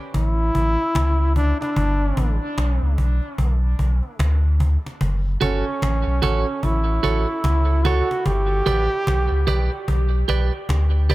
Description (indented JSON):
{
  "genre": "dub reggae",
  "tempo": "74 BPM",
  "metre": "4/4",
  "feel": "swing 61% on 16ths",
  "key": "unclear",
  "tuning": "A4 = 440 Hz",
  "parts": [
    { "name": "clear trombone", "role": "melody", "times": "0.1-9.8 s", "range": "C#4 to G4", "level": "-25 LUFS", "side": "equal", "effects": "dub echo" },
    { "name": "warm sub bass", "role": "bass", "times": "0.1-11.1 s", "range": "F#1 to D2", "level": "-19 LUFS", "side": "equal", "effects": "none" },
    { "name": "cajon", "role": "drums", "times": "0.1-11.1 s", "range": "none", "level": "-27 LUFS", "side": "equal", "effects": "none" },
    { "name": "clean electric guitar", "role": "accompaniment", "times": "5.4-11.1 s", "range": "F#4 to D5", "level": "-27 LUFS", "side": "right 7 dB", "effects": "high-pass filter, dub echo" }
  ],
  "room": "light reverb, studio ambience",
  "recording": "echo-heavy mix",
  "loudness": "-18 LUFS",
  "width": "side -18 dB against mid",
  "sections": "0.0-11.1 A section",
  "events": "break 0.0-5.0",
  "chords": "0.0 F#m (rootless); 1.8 G; 5.0 F#m; 8.3 G"
}